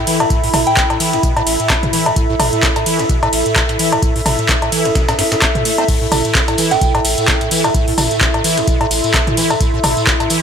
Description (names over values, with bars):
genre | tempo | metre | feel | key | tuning
acid house | 129 BPM | 4/4 | swing 57% on 16ths | A minor | A4 = 439 Hz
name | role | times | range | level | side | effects
warm analog pad | sustained chords | 0.0-10.4 s | E4 | -22 LUFS | right 1 dB | chorus, sidechain pumping
acid bass, square | riff | 0.0-10.4 s | A1 to C4 | -21 LUFS | equal | ensemble chorus, sidechain pumping
warbly tape-like pad | texture | 0.0-10.4 s | A4 to C6 | -20 LUFS | right 1 dB | chorus, built-in reverb, sidechain pumping
breakbeat sampler-style drum kit | drums | 0.1-10.4 s | hi-hat, snare drum, tambourine | -25 LUFS | equal | high-pass filter on snare, sidechain pumping on perc, high-pass filter on perc, sidechain pumping on hats, high-pass filter on hats, high-pass filter on room
electro analog drum machine | drums | 0.1-10.4 s | cowbell, crash cymbal, handclaps, hi-hat, ride cymbal, toms | -16 LUFS | left 1 dB | overdrive
electronic kick drum | drums | 0.3-10.2 s | none | -18 LUFS | equal | overdrive
soft synth bell | melody | 0.7-1.1, 6.7-7.2 s | G5 | -22 LUFS | right 1 dB | chorus, dub echo
tambourine | percussion | 5.9-10.4 s | none | -26 LUFS | left 3 dB | none
room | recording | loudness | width
light reverb, digital ambience | none | -12 LUFS | side -7 dB against mid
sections
0.0-10.4 A section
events
none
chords
0.0 Am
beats
| 0.30 0.77 1.23 1.70 | 2.16 2.63 3.09 3.56 | 4.02 4.49 4.96 5.42 | 5.88 6.35 6.82 7.28 | 7.75 8.21 8.68 9.14 | 9.61 10.07